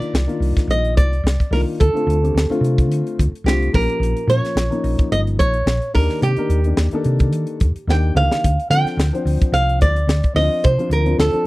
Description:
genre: electric jazz fusion.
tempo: 108 BPM.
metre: 4/4.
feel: straight.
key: unclear.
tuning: A4 = 440 Hz.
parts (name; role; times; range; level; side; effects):
flamenco guitar; melody; 0.0-11.5 s; G4 to G5; -21 LUFS; right 2 dB; none.
dark concert grand piano; accompaniment; 0.0-11.5 s; D3 to C5; -24 LUFS; left 3 dB; none.
hollow-body short-scale fingered electric bass; bass; 0.0-11.4 s; G1 to Eb3; -18 LUFS; equal; none.
crisp fusion drum kit; drums; 0.0-11.5 s; hi-hat, kick drum, snare drum, toms; -18 LUFS; equal; none.
room: little or no reverb.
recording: dry, close 1970s-style studio recording.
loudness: -15 LUFS.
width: side -19 dB against mid.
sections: 0.0-11.5 A section.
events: drum fill 7.9-8.4.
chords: 0.0 Cm11; 1.8 Dm7; 3.7 Bbm6; 6.0 Ebmaj7; 8.4 Dm7.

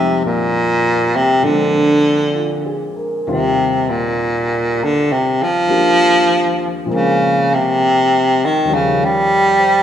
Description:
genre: jazz ballad.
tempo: 66 BPM.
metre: 4/4.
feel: swing 68% on 8ths.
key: Eb major.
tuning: A4 = 440 Hz.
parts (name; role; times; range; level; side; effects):
breathy baritone saxophone; melody; 0.0-9.8 s; Bb2 to G3; -13 LUFS; equal; none.
warm baby grand piano; accompaniment; 0.0-9.8 s; Eb2 to C5; -22 LUFS; left 1 dB; none.
room: moderate scoring stage reverb, RT60 1.7 s.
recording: recorded in a church or concert hall.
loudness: -13 LUFS.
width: side -10 dB against mid.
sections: 0.0-3.3 A section; 3.3-9.8 B section.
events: baritone saxophone solo 3.3-9.8.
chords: 0.0 Fm7; 1.4 Bb7; 3.3 Eb69; 6.9 Bb5; 8.7 Eb7.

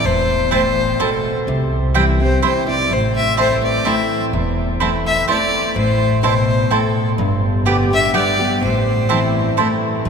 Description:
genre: bluegrass.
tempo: 126 BPM.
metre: 3/4.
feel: straight.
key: A minor.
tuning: A4 = 440 Hz.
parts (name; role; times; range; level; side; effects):
clear fiddle; melody; 0.0-9.5 s; A4 to E5; -19 LUFS; left 1 dB; none.
picked steel-string acoustic guitar; accompaniment; 0.0-10.1 s; E2 to G4; -20 LUFS; left 1 dB; none.
upright bass; bass; 0.0-10.1 s; E1 to C2; -21 LUFS; equal; none.
mandolin; stabs; 0.5-9.7 s; B3 to A5; -22 LUFS; right 4 dB; none.
room: wet cathedral reverb, RT60 5.8 s.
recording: recorded in a church or concert hall.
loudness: -14 LUFS.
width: side -6 dB against mid.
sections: 0.0-10.1 A section.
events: none.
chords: 0.0 Am; 1.5 C; 2.9 Am; 7.2 G; 8.6 Am.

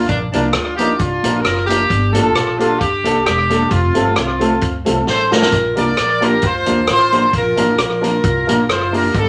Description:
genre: ska.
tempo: 132 BPM.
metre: 4/4.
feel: swing 54% on 8ths.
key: Bb major.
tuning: A4 = 443 Hz.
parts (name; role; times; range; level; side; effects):
clear horn section; melody; 0.0-9.3 s; Bb3 to D5; -19 LUFS; equal; none.
upright bass; bass; 0.0-9.3 s; E1 to Eb2; -25 LUFS; equal; none.
vintage drum kit; drums; 0.1-9.3 s; hi-hat, kick drum, rim click, snare drum; -23 LUFS; equal; slapback echo.
mellow electric guitar; accompaniment; 0.3-9.1 s; A3 to A4; -23 LUFS; equal; none.
honky-tonk upright piano; stabs; 0.3-9.1 s; A3 to Bb4; -23 LUFS; equal; none.
room: wet studio reverb, RT60 0.5 s.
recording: none.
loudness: -15 LUFS.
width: mono.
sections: 0.0-9.3 A section.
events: drum fill 5.1-5.5.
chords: 0.0 Bb; 1.9 Gmadd9; 3.7 F; 5.5 Bb.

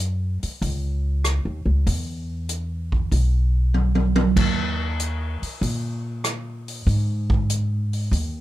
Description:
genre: jazz piano trio.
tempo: 96 BPM.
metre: 4/4.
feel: swing 69% on 8ths.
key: unclear.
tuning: A4 = 441 Hz.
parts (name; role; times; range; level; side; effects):
upright bass; bass; 0.0-8.4 s; B1 to Bb2; -22 LUFS; equal; none.
swinging big-band drum kit; drums; 0.4-8.3 s; crash cymbal, hi-hat, kick drum, rim click, toms; -24 LUFS; right 2 dB; none.
room: little or no reverb.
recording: none.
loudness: -21 LUFS.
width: side -15 dB against mid.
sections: 0.0-8.4 A section.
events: drum fill 3.7-4.4.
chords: none.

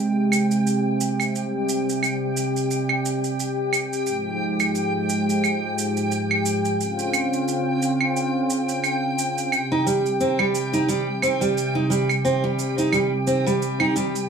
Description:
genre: folktronica.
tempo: 88 BPM.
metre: 4/4.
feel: swing 56% on 16ths.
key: Ab major.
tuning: A4 = 444 Hz.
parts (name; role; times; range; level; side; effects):
warm analog pad; sustained chords; 0.0-14.3 s; Ab2 to G4; -23 LUFS; equal; chorus.
backwards swelling texture; texture; 0.0-14.3 s; G5; -29 LUFS; left 1 dB; built-in reverb.
claves and shaker; drums; 0.3-14.3 s; none; -26 LUFS; right 3 dB; none.
picked steel-string acoustic guitar; arpeggios; 9.7-14.1 s; G3 to Eb4; -22 LUFS; right 3 dB; tape echo.
room: moderate studio reverb, RT60 0.5 s.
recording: small room ambience.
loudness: -20 LUFS.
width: side -6 dB against mid.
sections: 0.0-14.3 A section.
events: none.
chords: 0.0 Abmaj7; 4.1 Fmadd9/Ab; 6.8 Dbmaj7; 9.5 Cm.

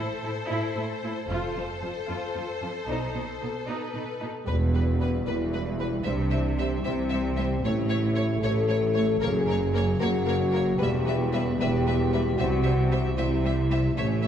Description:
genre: cinematic, epic orchestral film score.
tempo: 76 BPM (dotted quarters).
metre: 6/8.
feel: straight.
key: E minor from 4.5 s.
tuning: A4 = 440 Hz.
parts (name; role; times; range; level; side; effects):
rich symphonic violin section; melody; 0.0-14.3 s; B4 to E5; -36 LUFS; left 3 dB; none.
warm symphonic violin section; second line; 0.0-14.3 s; A4 to C#5; -36 LUFS; left 2 dB; none.
warm symphonic viola section; accompaniment; 0.0-14.3 s; G3 to F4; -35 LUFS; right 2 dB; none.
rich symphonic cello section; bass; 0.0-14.3 s; E2 to C3; -31 LUFS; right 1 dB; none.
rich studio double bass section; bass; 1.3-14.3 s; E1 to C2; -30 LUFS; right 2 dB; none.
dark French horn section; sustained chords; 4.5-14.3 s; B3 to A4; -28 LUFS; left 4 dB; none.
mellow trombone section; sustained chords; 4.5-14.3 s; C#3 to C4; -33 LUFS; right 2 dB; none.
warm tuba; bass; 4.5-14.3 s; E1 to C2; -32 LUFS; right 2 dB; none.
timpani; percussion; 4.5-5.2 s; E2; -30 LUFS; right 1 dB; none.
room: wet scoring stage reverb, RT60 1.7 s.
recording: heard from further back in the room.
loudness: -24 LUFS.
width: side -9 dB against mid.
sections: 0.0-4.5 A section; 4.5-14.3 B section.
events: build-up 0.0-4.5.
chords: 0.0 Am; 1.3 F; 2.9 B7; 4.5 Em; 6.1 C; 7.6 A; 9.2 F#; 10.8 Em; 12.4 C.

